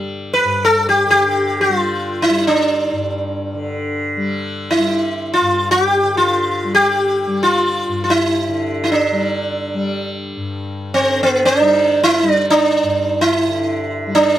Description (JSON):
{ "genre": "indian classical, Hindustani", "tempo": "free time", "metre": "none", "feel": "none", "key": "unclear", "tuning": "A4 = 440 Hz", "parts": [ { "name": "tanpura", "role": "drone", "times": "0.0-14.4 s", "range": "G2 to G3", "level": "-24 LUFS", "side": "left 2 dB", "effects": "none" }, { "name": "sitar", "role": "melody", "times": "0.3-14.4 s", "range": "B3 to B4", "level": "-14 LUFS", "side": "equal", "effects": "none" } ], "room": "light reverb", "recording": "close, detailed microphones", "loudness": "-14 LUFS", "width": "side -12 dB against mid", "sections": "0.0-14.4 A section", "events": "none", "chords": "none", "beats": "free time" }